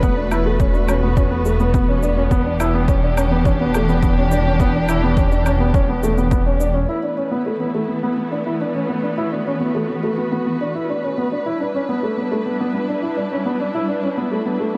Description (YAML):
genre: piano and strings electronica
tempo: 105 BPM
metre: 4/4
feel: straight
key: unclear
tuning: A4 = 439 Hz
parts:
  - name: dark chamber string section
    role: sustained chords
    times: 0.0-14.8 s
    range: E3 to B4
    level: -26 LUFS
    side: equal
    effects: none
  - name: dark baby grand piano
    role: riff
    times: 0.0-14.8 s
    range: A3 to E4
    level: -23 LUFS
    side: equal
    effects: digital delay
  - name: dark detuned saw bass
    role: bass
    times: 0.0-6.9 s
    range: E1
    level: -22 LUFS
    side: equal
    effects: sidechain pumping
  - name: electronic kick drum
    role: drums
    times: 0.0-6.4 s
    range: none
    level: -22 LUFS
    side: equal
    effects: overdrive
  - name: shaker and woodblock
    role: drums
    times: 0.0-6.7 s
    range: none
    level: -32 LUFS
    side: equal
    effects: none
room: light reverb, small room ambience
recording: dark, warm production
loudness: -19 LUFS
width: mono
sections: 0.0-6.9 A section; 6.9-14.8 B section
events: none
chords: 0.0 Asus2/E; 2.3 Em7; 6.9 Asus2/E; 11.5 Em7